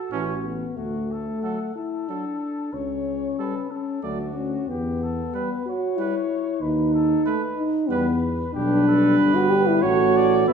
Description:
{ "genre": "classical, brass quintet", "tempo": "93 BPM", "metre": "3/4", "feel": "straight", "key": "D major", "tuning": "A4 = 440 Hz", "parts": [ { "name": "mellow cornet", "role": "melody", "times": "0.0-10.5 s", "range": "F#4 to F#5", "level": "-32 LUFS", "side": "left 6 dB", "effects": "none" }, { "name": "dark French horn", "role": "accompaniment", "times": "0.0-10.5 s", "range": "A3 to G4", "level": "-22 LUFS", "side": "equal", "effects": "none" }, { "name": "clear trumpet", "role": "second line", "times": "0.1-10.5 s", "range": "C#4 to E5", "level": "-30 LUFS", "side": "right 8 dB", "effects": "none" }, { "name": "warm trombone", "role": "accompaniment", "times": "0.1-10.5 s", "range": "E3 to B3", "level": "-31 LUFS", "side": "right 2 dB", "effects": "none" }, { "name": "mellow tuba", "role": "bass", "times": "0.1-10.5 s", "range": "G1 to E2", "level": "-28 LUFS", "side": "right 2 dB", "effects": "none" } ], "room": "wet recital hall reverb, RT60 1.6 s", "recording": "recorded in a church or concert hall", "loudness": "-21 LUFS", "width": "side -6 dB against mid", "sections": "0.8-10.5 A section", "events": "none", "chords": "0.1 A; 0.8 D; 2.7 A7/C#; 4.0 D; 4.7 Em; 6.6 B7/D#; 7.9 Em; 8.5 G/B; 9.8 F#m/A", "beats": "0.11 | 0.78 1.44 2.09 | 2.74 3.39 4.04 | 4.69 5.34 5.98 | 6.62 7.26 7.91 | 8.54 9.19 9.84 | 10.48" }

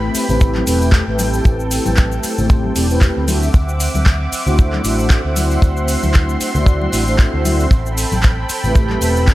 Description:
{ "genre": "nu-disco, nu disco", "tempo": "115 BPM", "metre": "4/4", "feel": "swing 56% on 16ths", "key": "A dorian", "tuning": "A4 = 440 Hz", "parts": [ { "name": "mellow synth brass", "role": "accompaniment", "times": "0.0-9.3 s", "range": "A3 to E5", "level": "-20 LUFS", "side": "equal", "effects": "chorus, cassette tape, slapback echo" }, { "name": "lush unison pad", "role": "sustained chords", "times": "0.0-9.3 s", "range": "C4 to D6", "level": "-24 LUFS", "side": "right 1 dB", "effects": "chorus, sidechain pumping" }, { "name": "picked electric bass with an envelope filter", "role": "bass", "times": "0.0-9.3 s", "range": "E1 to D2", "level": "-19 LUFS", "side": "equal", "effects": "tube saturation" }, { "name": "pop drum kit", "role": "drums", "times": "0.1-9.3 s", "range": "handclaps, hi-hat, shaker", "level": "-23 LUFS", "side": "equal", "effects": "overdrive" }, { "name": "tambourine and congas", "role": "percussion", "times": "0.1-9.3 s", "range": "none", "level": "-27 LUFS", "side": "left 2 dB", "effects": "none" }, { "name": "kick drum", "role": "drums", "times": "0.4-9.3 s", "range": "none", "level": "-12 LUFS", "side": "equal", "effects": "none" } ], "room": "small room ambience", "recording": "none", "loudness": "-13 LUFS", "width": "side -16 dB against mid", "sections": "0.0-9.3 A section", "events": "none", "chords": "0.0 Am9; 3.3 D9; 7.7 Am9", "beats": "0.41 0.93 | 1.45 1.97 2.50 3.02 | 3.54 4.06 4.58 5.10 | 5.63 6.15 6.67 7.19 | 7.71 8.23 8.76 9.28" }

